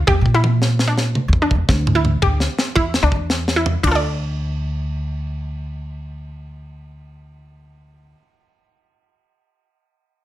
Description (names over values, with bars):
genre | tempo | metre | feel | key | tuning
progressive instrumental, band music in an uneven meter | 112 BPM | 7/4 | straight | D minor | A4 = 440 Hz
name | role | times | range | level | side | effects
analog pluck | arpeggios | 0.0-8.2 s | D4 to D5 | -20 LUFS | equal | chorus
upright bass | bass | 0.0-8.1 s | D2 to Bb2 | -20 LUFS | equal | none
tight funk drum kit | drums | 0.1-4.0 s | kick drum, ride cymbal, snare drum, toms | -20 LUFS | equal | none
room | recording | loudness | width
light reverb | none | -16 LUFS | side -14 dB against mid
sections
0.0-3.8 A section; 3.8-7.6 B section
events
drum fill 0.1-3.8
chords
0.1 Em7b5; 3.8 Dm